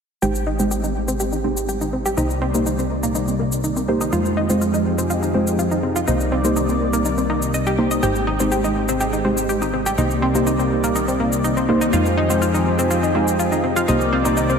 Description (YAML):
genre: progressive house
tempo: 123 BPM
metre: 4/4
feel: straight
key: C minor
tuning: A4 = 441 Hz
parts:
  - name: lush unison pad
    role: sustained chords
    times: 0.2-14.6 s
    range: C3 to D5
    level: -23 LUFS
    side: equal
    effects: chorus
  - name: analog pluck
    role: arpeggios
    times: 0.2-14.6 s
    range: Bb3 to Eb5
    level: -22 LUFS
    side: equal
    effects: chorus, diffuse ambient delay
  - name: deep mellow chord stab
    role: stabs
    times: 0.2-14.6 s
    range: Ab3 to C5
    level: -23 LUFS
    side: equal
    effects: chorus, diffuse ambient delay
  - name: plucky analog bass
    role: bass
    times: 0.2-14.6 s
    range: Ab1 to F2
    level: -26 LUFS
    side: equal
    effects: none
  - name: shaker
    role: drums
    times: 0.2-14.6 s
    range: none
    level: -31 LUFS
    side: left 3 dB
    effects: overdrive
room: wet lush hall reverb, RT60 1.8 s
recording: dreamy mix soaked in reverb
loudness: -17 LUFS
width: side -6 dB against mid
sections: 0.2-14.6 A section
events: filter sweep on synth arpeggio sound 0.2-14.6; filter sweep on synth stab 0.2-14.6; filter sweep on analog synth pad 0.2-14.6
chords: 0.2 Abmaj7; 2.2 Cm7; 4.1 Fm7; 6.1 Cm7; 8.0 Abmaj7; 10.0 Cm7; 11.9 Fm7; 13.9 Cm7